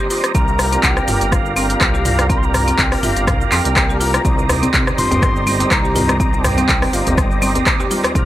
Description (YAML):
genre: afro house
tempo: 123 BPM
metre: 4/4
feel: swing 55% on 16ths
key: C minor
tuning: A4 = 440 Hz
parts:
  - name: breathy bright bansuri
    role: melody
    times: 0.0-7.7 s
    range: F5 to C6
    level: -24 LUFS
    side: left 2 dB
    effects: tape echo
  - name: warm analog pad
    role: sustained chords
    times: 0.0-8.3 s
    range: Eb3 to D6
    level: -29 LUFS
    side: equal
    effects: none
  - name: buzzing marimba with hard mallets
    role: arpeggios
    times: 0.0-8.3 s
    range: Bb3 to G4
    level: -24 LUFS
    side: equal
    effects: sidechain pumping, tape echo
  - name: tonewheel organ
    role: stabs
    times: 0.0-8.3 s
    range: G3 to Bb4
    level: -22 LUFS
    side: right 2 dB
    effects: chorus vibrato, slow rotary speaker, sidechain pumping, tape echo
  - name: deep house drum kit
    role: drums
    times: 0.1-8.3 s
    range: handclaps, hi-hat, rim click, shaker, toms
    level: -19 LUFS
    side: equal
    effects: none
  - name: smooth gliding synth bass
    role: bass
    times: 0.3-8.3 s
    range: G1 to F2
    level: -20 LUFS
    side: equal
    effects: sidechain pumping
  - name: electronic kick drum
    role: drums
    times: 0.3-8.3 s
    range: none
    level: -19 LUFS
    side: equal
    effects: none
  - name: djembe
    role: percussion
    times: 4.4-8.1 s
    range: none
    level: -27 LUFS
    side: equal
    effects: none
  - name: congas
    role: percussion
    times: 4.6-8.0 s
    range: none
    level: -24 LUFS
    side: left 1 dB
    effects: none
room: light reverb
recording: dry, gritty hardware recording, cassette tape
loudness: -13 LUFS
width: side -14 dB against mid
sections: 0.0-8.3 A section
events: none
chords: 0.3 Bb6; 4.2 Cm9